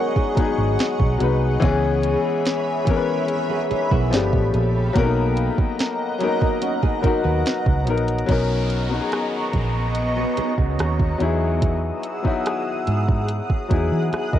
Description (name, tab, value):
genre	contemporary R&B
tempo	72 BPM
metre	4/4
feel	straight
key	B major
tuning	A4 = 439 Hz
part	warm grand piano	accompaniment	0.0-14.4 s	E3 to D#5	-23 LUFS	left 6 dB	cassette tape
part	granular cloud pad	sustained chords	0.0-14.4 s	B3 to F#6	-27 LUFS	right 2 dB	built-in reverb, cassette tape
part	nylon-string guitar	arpeggios	0.0-11.2 s	G#3 to B4	-30 LUFS	right 11 dB	cassette tape, analog delay
part	smooth R&B drum kit	drums	0.2-14.4 s	hi-hat, kick drum, rim click, snare drum	-21 LUFS	right 2 dB	cassette tape
part	vintage muted fingered electric bass	bass	0.4-14.4 s	G1 to E3	-22 LUFS	right 2 dB	none
part	downlifter	sound effects	8.3-14.4 s	none	-37 LUFS	right 2 dB	none
room	light reverb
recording	home recording on cassette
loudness	-18 LUFS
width	side -11 dB against mid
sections	0.0-8.3 A section; 8.3-14.4 B section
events	none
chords	0.0 B6; 1.6 C#m7; 4.1 G9; 5.0 Bmaj7; 11.2 Emaj9